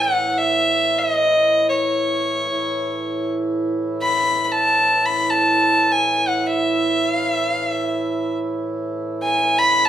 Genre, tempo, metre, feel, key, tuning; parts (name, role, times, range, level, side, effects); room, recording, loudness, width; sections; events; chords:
indian classical; free time; A raga yaman; A4 = 440 Hz
warm violin; melody; 0.0-9.9 s; C#5 to B5; -17 LUFS; equal
pedal harmonium; drone; 0.0-9.9 s; A2 to E3; -24 LUFS; right 2 dB
wet large studio reverb, RT60 1.1 s; band playing live in one room; -17 LUFS; side -11 dB against mid
0.0-9.9 A section